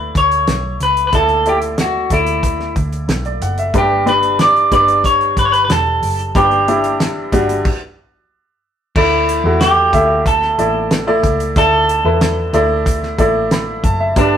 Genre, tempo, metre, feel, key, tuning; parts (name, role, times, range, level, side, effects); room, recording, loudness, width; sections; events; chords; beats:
piano-driven pop; 92 BPM; 4/4; straight; D major; A4 = 445 Hz
clean electric guitar; melody; 0.0-14.4 s; D4 to D5; -14 LUFS; equal
bright upright piano; accompaniment; 0.0-14.4 s; G2 to B5; -18 LUFS; equal
vintage muted picked electric bass; bass; 0.0-14.4 s; E1 to E2; -22 LUFS; equal
damped 70s drum kit; drums; 0.2-14.3 s; crash cymbal, hi-hat, kick drum, snare drum; -18 LUFS; equal
moderate studio reverb, RT60 0.6 s; rough rehearsal-room recording; -12 LUFS; side -9 dB against mid
0.0-9.0 A section; 9.0-14.4 B section
stop 7.7-9.0
0.0 Dsus2; 3.7 G; 9.0 Dsus2
0.48 | 1.13 1.79 2.44 3.09 | 3.74 4.39 5.04 5.70 | 6.35 7.00 7.65 8.30 | 8.96 9.61 10.26 10.91 | 11.56 12.21 12.86 13.51 | 14.17